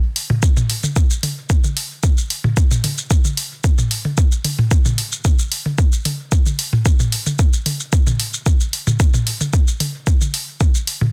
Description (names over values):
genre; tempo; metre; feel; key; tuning
techno; 112 BPM; 4/4; straight; none; none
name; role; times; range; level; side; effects
electronic hi-hat and shaker; drums; 0.2-11.0 s; none; -26 LUFS; equal; none
electronic toms; percussion; 0.3-11.1 s; none; -23 LUFS; equal; sidechain pumping on toms
electronic kick drum; drums; 0.4-10.7 s; none; -17 LUFS; equal; none
room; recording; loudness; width
little or no reverb; dense, heavily limited modern master; -18 LUFS; mono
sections
0.0-11.1 A section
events
none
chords
none